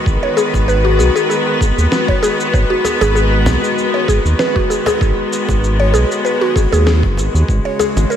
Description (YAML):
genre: organic downtempo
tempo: 97 BPM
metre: 4/4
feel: swing 54% on 16ths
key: G# minor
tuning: A4 = 440 Hz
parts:
  - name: clear studio string section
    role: sustained chords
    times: 0.0-8.2 s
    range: C#3 to B4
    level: -18 LUFS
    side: left 2 dB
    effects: sidechain pumping
  - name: mallet-like synth pluck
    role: arpeggios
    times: 0.0-8.2 s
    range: F#4 to C#5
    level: -18 LUFS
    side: equal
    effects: chorus, analog delay
  - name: bronze singing bowl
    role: texture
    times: 0.0-8.2 s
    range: none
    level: barely audible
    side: none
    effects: none
  - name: round analog bass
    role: bass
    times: 0.1-8.1 s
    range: F#1 to D#2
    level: -14 LUFS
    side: equal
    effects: sidechain pumping
  - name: electronic cabasa and snare drum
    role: drums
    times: 0.1-8.2 s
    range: none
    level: -25 LUFS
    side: equal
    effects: none
  - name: electronic kick drum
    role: drums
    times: 0.1-7.6 s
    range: none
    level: -18 LUFS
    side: equal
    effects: none
  - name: cajon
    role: percussion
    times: 0.5-8.1 s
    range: none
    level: -26 LUFS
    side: right 2 dB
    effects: none
room: moderate lush hall reverb, RT60 1.8 s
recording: dreamy mix soaked in reverb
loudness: -12 LUFS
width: side -9 dB against mid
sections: 0.0-8.2 A section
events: none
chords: 0.0 G#m7; 7.5 F#add9/G#